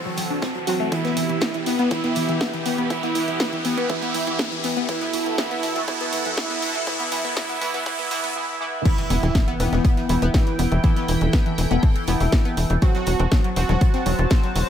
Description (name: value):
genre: melodic techno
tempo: 121 BPM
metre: 4/4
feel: straight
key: E minor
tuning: A4 = 437 Hz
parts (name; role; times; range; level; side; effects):
- sweeping resonant pad; sustained chords; 0.0-14.7 s; E3 to A5; -30 LUFS; right 1 dB; chorus, sidechain pumping
- synth brass stab; stabs; 0.0-14.7 s; E3 to F#4; -29 LUFS; right 2 dB; chorus, sidechain pumping, digital delay
- riser and impact; sound effects; 0.0-10.8 s; none; -30 LUFS; equal; none
- analog pluck; arpeggios; 0.1-14.6 s; E3 to D4; -28 LUFS; left 1 dB; chorus, phaser, sidechain pumping, digital delay
- house drum kit; drums; 0.2-14.7 s; crash cymbal, hi-hat, snare drum; -29 LUFS; equal; none
- oversized low-tuned drum kit; drums; 0.2-14.7 s; hi-hat, snare drum; -39 LUFS; right 1 dB; none
- electronic kick drum; drums; 0.4-14.4 s; none; -20 LUFS; equal; high-pass filter on kick, high-pass filter on room
- analog synth brass; melody; 0.9-14.2 s; B3 to F#4; -27 LUFS; equal; chorus, cassette tape, sidechain pumping, ping-pong delay
- tight sequencer bass; bass; 9.1-14.6 s; E1; -21 LUFS; equal; sidechain pumping
room: light reverb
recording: high-pass filter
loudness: -19 LUFS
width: side -9 dB against mid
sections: 0.0-8.9 A section; 8.9-14.7 B section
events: build-up 0.0-8.9; riser 0.0-8.4; filter sweep on synth arpeggio sound 0.0-8.9; filter sweep 0.0-8.9; drop 8.9-14.7; impact 8.9-10.8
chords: 0.0 F#dim/E; 0.9 Em; 4.9 Esus24; 8.9 Em; 12.8 F#dim/E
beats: 0.42 | 0.92 1.42 1.91 2.41 | 2.90 3.40 3.90 4.39 | 4.89 5.38 5.88 6.38 | 6.87 7.37 7.86 8.36 | 8.85 9.35 9.85 10.34 | 10.84 11.33 11.83 12.32 | 12.82 13.32 13.81 14.31